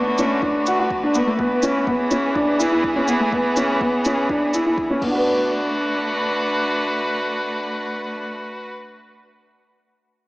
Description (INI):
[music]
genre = piano and strings electronica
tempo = 124 BPM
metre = 4/4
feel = straight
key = B minor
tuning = A4 = 440 Hz
[part]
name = rich string quartet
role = sustained chords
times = 0.0-8.7 s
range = D3 to B4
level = -22 LUFS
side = equal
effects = sidechain pumping
[part]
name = dark upright piano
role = riff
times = 0.0-8.4 s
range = A3 to B4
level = -20 LUFS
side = equal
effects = digital delay
[part]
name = electronic shaker and crash cymbal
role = drums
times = 0.2-5.1 s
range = none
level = -32 LUFS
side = equal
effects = studio reverb
[part]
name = electronic kick drum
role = drums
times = 0.4-5.1 s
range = none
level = -34 LUFS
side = equal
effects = studio reverb
[sound]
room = moderate concert hall reverb, RT60 2.5 s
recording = small speaker sound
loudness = -18 LUFS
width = side -20 dB against mid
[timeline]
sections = 0.0-5.3 A section; 5.3-9.1 B section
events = none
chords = 0.0 Bm7; 1.4 E; 5.0 Bm7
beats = 0.42 0.91 | 1.39 1.87 2.36 2.84 | 3.32 3.81 4.29 4.78 | 5.26 5.74 6.23 6.71 | 7.20 7.68 8.16 8.65